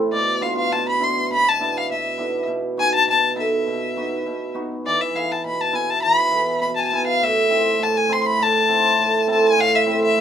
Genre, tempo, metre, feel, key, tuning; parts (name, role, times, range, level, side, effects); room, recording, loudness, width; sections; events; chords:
klezmer; 101 BPM; 2/4; straight; A4 = 441 Hz
cimbalom; accompaniment; 0.0-10.2 s; A2 to C5; -22 LUFS; right 3 dB
rich violin; melody; 0.1-10.2 s; D5 to C6; -19 LUFS; left 2 dB
light reverb; minimal, uncompressed stereo recording; -17 LUFS; side -9 dB against mid
0.1-9.6 A section
0.1 Bm; 2.5 B; 4.8 E; 7.2 Am